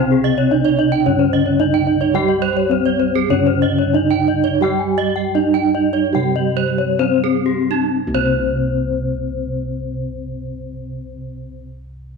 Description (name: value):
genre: Balinese gamelan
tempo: 60-110 BPM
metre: 4/4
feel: straight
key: C pelog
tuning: A4 = 439 Hz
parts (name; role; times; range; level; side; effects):
- gamelan-type bronze metallophone; melody; 0.0-11.6 s; C4 to G4-30c; -18 LUFS; equal; none
- gamelan-type bronze metallophone; accompaniment; 0.0-11.6 s; C3 to G3-30c; -24 LUFS; right 9 dB; none
- gamelan-type bronze metallophone; arpeggios; 0.0-11.6 s; G4-30c to Ab5-20c; -23 LUFS; left 12 dB; none
- gamelan-type bossed gongs; bass; 0.0-11.6 s; C2 to G4-30c; -24 LUFS; equal; none
- gamelan-type bronze metallophone; arpeggios; 0.2-11.6 s; Eb4-30c to G5-30c; -24 LUFS; right 9 dB; slapback echo
room: moderate echo chamber reverb, RT60 1.6 s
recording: 1960s-style stereo with parts hard left and right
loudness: -15 LUFS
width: side -4 dB against mid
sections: 0.0-8.0 A section; 8.0-12.2 B section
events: slowing down 2.2-8.0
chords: none